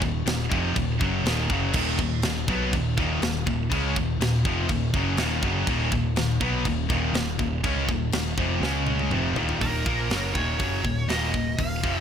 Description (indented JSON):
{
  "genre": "heavy metal",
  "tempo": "122 BPM",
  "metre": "4/4",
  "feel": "straight",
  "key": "Eb minor",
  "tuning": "A4 = 440 Hz",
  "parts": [
    { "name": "high-gain distorted guitar", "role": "riff", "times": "0.0-12.0 s", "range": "Eb2 to Db4", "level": "-28 LUFS", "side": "left 10 dB", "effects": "distortion" },
    { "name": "high-gain distorted guitar", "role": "riff", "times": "0.0-12.0 s", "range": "Eb2 to Db4", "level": "-30 LUFS", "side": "right 11 dB", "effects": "distortion" },
    { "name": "thick fuzz guitar", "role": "riff", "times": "0.0-9.6 s", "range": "Eb2 to Db4", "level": "-32 LUFS", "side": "equal", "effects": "distortion" },
    { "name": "overdriven picked electric bass", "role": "bass", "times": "0.0-12.0 s", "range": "Eb1 to Db2", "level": "-29 LUFS", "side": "equal", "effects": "none" },
    { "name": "tight metal drum kit", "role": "drums", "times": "0.0-11.9 s", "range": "china cymbal, crash cymbal, hi-hat, kick drum, snare drum, toms", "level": "-28 LUFS", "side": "equal", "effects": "none" },
    { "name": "high-gain lead guitar", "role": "melody", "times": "9.6-12.0 s", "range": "Bb4 to F5", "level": "-30 LUFS", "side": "right 2 dB", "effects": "distortion" }
  ],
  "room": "little or no reverb",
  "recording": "none",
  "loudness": "-22 LUFS",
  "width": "side -8 dB against mid",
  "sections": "0.0-9.6 A section; 9.6-12.0 B section",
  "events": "drum fill 8.6-9.6",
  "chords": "0.0 Ebm; 8.6 Db5; 9.1 Eb5; 9.6 Ebm"
}